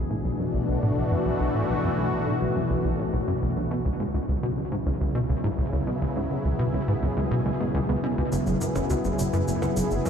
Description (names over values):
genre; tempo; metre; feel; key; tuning
ambient, sequencer-driven space music; 104 BPM; 4/4; straight; B dorian; A4 = 441 Hz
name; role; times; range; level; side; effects
sweeping resonant pad; sustained chords; 0.0-10.1 s; B2 to G#4; -27 LUFS; left 1 dB; chorus
plucky analog bass; riff; 0.0-10.1 s; F#1 to B2; -26 LUFS; equal; lush chorus, vintage 12-bit sampler grit, tape echo
warbly dusty pluck; arpeggios; 0.1-10.1 s; B2 to F#4; -36 LUFS; right 3 dB; none
cabasa and percussion blips; percussion; 8.3-10.1 s; none; -37 LUFS; right 1 dB; tape echo
room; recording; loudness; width
wet cathedral reverb, RT60 7.6 s; in a vast, echoing space; -23 LUFS; side -7 dB against mid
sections
0.0-10.1 A section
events
none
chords
0.0 Bm; 3.7 C#m; 8.3 F#5